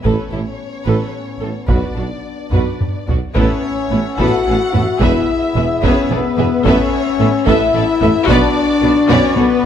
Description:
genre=cinematic, epic orchestral film score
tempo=110 BPM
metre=3/4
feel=straight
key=A major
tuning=A4 = 440 Hz
part: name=rich symphonic violin section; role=second line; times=0.0-9.7 s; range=D4 to E5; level=-23 LUFS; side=left 2 dB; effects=none
part: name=warm chamber viola section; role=accompaniment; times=0.0-9.4 s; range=B3 to A4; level=-21 LUFS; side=right 2 dB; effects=none
part: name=clear symphonic cello section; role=bass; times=0.0-9.4 s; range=E2 to B2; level=-23 LUFS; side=right 3 dB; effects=none
part: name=taiko ensemble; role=drums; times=0.0-9.6 s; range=none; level=-20 LUFS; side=equal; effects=none
part: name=warm symphonic violin section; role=melody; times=0.1-9.7 s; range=B4 to F#5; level=-26 LUFS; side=left 4 dB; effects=none
part: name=warm French horn section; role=sustained chords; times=0.1-9.7 s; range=B3 to F#4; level=-18 LUFS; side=left 5 dB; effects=none
part: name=mellow tuba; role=bass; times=0.1-9.5 s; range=E1 to B1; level=-24 LUFS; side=right 4 dB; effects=none
part: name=rich symphonic double bass section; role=bass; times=0.1-9.5 s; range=E1 to B1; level=-22 LUFS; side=right 3 dB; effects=none
part: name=mellow woodwind section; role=sustained chords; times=3.4-9.7 s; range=B3 to E5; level=-25 LUFS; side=equal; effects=none
room=light reverb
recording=close, detailed microphones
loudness=-13 LUFS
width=side -9 dB against mid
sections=0.0-3.4 A section; 3.4-9.7 B section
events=drum fill 2.5-3.4, 9.1-9.7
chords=0.1 Aadd9; 1.7 Bm; 3.4 Aadd9; 5.0 E; 6.6 Aadd9; 8.3 Bm

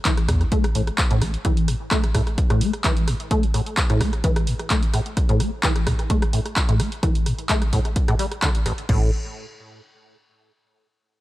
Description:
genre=acid house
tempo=129 BPM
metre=4/4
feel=straight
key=unclear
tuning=A4 = 438 Hz
part: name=liquid acid bass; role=riff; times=0.1-9.1 s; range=A1 to A3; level=-24 LUFS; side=equal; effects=ensemble chorus, sidechain pumping, analog delay
part: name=electronic kick drum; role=drums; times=0.1-9.0 s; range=none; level=-21 LUFS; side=equal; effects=studio reverb
part: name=punchy analog drum machine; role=drums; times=0.1-9.0 s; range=crash cymbal, handclaps, hi-hat, rim click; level=-27 LUFS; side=equal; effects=studio reverb
part: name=round analog bass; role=bass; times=0.3-1.4, 8.9-9.1 s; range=A1 to E2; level=-23 LUFS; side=equal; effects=sidechain pumping
room=little or no reverb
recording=dry, gritty hardware recording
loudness=-19 LUFS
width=side -16 dB against mid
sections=0.0-8.9 A section; 8.9-10.8 B section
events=filter sweep on acid bass 0.0-8.9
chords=0.0 A5; 8.9 N.C.

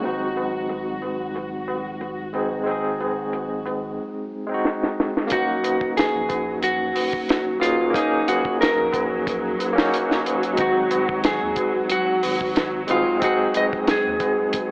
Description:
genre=trip hop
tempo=91 BPM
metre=4/4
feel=swing 54% on 16ths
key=Eb dorian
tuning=A4 = 442 Hz
part: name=barky tine electric piano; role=accompaniment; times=0.0-14.7 s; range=Ab3 to Ab4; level=-24 LUFS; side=equal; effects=overdrive, tremolo
part: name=dark symphonic string section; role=sustained chords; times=0.0-14.7 s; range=Gb3 to Gb4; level=-29 LUFS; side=equal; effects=none
part: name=soft dub sub bass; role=bass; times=0.0-14.7 s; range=Eb1 to Eb2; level=-40 LUFS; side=equal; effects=none
part: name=deep reggae drum kit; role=drums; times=0.0-14.7 s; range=hi-hat, kick drum, snare drum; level=-24 LUFS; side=equal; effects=low-pass filter on kick, low-pass filter on hats, low-pass filter on snare, low-pass filter on room
part: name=tabla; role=percussion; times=0.0-14.7 s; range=none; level=-30 LUFS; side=equal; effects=none
part: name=flickering grainy texture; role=texture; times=0.0-4.0 s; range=Gb3 to Gb4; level=-38 LUFS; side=equal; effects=none
part: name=mellow electric guitar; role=melody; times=5.3-14.7 s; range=Eb4 to Eb5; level=-22 LUFS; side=equal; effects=tape echo
room=light reverb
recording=AM radio sound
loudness=-20 LUFS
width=side -30 dB against mid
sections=0.0-5.3 A section; 5.3-14.7 B section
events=drum fill 4.6-5.3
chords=0.0 Ab7; 5.3 Ebm7; 10.6 Ab7

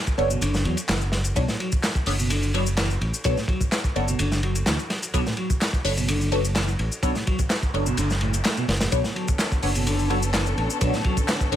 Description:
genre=breakbeat, breaks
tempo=127 BPM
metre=4/4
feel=straight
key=B minor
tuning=A4 = 441 Hz
part: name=crunchy breakbeat drum kit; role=drums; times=0.1-11.6 s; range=hi-hat, kick drum, ride cymbal, snare drum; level=-25 LUFS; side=equal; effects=none
part: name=electronic shaker and handclaps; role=drums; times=0.1-11.5 s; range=none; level=-31 LUFS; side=left 2 dB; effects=overdrive
part: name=filtered dub chord stab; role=stabs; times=0.2-11.6 s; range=B3 to C#5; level=-29 LUFS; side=left 1 dB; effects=phaser, wide subtle chorus, dub echo
part: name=modern bright fingered electric bass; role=bass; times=0.2-11.6 s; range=F#1 to E2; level=-25 LUFS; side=equal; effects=tube saturation
part: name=clean electric guitar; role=riff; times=0.3-11.2 s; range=A2 to A3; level=-29 LUFS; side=right 1 dB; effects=tube saturation, dub echo
part: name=noise sweep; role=sound effects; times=7.5-8.9 s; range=none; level=-38 LUFS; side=right 4 dB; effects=none
part: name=muted studio string section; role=sustained chords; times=8.9-11.6 s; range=D3 to A4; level=-30 LUFS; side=left 2 dB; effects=vintage 12-bit sampler grit, sidechain pumping
room=small room ambience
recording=none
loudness=-21 LUFS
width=side -11 dB against mid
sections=0.0-11.6 A section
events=noise sweep 7.5-8.9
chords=0.0 Bm9

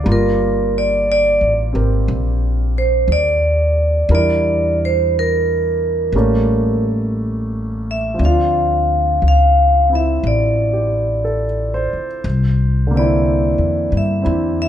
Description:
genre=jazz ballad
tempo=59 BPM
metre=4/4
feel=swing 67% on 8ths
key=unclear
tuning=A4 = 440 Hz
part: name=warm concert grand piano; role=accompaniment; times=0.0-14.7 s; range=D3 to D5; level=-21 LUFS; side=right 1 dB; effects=none
part: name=upright bass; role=bass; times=0.0-14.7 s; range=G1 to G2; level=-18 LUFS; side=left 1 dB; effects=none
part: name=vibraphone with medium hard mallets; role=melody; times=0.1-14.7 s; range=Bb4 to F5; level=-17 LUFS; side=equal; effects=none
room=light reverb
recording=band playing live in one room, nothing above 10.9 kHz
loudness=-14 LUFS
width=side -10 dB against mid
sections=0.0-14.7 A section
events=vibraphone solo 0.0-14.7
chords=0.1 Gm7; 4.1 Em7b5; 6.1 A7b9; 8.2 Dm9; 12.2 C9

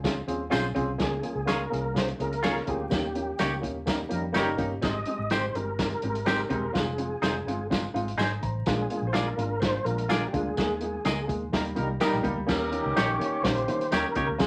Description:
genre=uptempo 1960s-style soul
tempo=125 BPM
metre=4/4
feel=straight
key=unclear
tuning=A4 = 440 Hz
part: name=dark upright piano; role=accompaniment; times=0.0-14.5 s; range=G3 to Bb5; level=-33 LUFS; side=equal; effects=none
part: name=vintage muted fingered electric bass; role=bass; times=0.0-14.5 s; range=Fb1 to Eb3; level=-36 LUFS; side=equal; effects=none
part: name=vintage drum kit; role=drums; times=0.0-14.5 s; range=crash cymbal, hi-hat, kick drum, snare drum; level=-33 LUFS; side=equal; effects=none
part: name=tambourine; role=percussion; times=0.0-14.5 s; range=none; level=-44 LUFS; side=equal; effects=none
part: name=clean electric guitar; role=stabs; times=0.5-14.3 s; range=Eb4 to Eb5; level=-32 LUFS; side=equal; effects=none
part: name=mellow tonewheel organ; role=melody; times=1.0-14.5 s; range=G4 to Eb5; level=-35 LUFS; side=equal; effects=chorus vibrato, fast rotary speaker
part: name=warm horn section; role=second line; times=3.9-4.7, 11.5-14.5 s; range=Eb3 to Bb4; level=-34 LUFS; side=equal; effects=none
room=moderate club reverb, RT60 0.6 s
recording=vinyl crackle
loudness=-28 LUFS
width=mono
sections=0.0-12.5 A section; 12.5-14.5 B section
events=band accent 2.9-4.8, 10.6-12.5; upright piano fill 7.7-8.7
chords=0.0 Dbmaj7; 1.0 Bbm7; 2.9 Eb7; 4.8 Abmaj7; 6.7 Fm7; 8.7 Bb7; 10.6 Ebsus4; 11.5 Eb; 12.5 Eb7

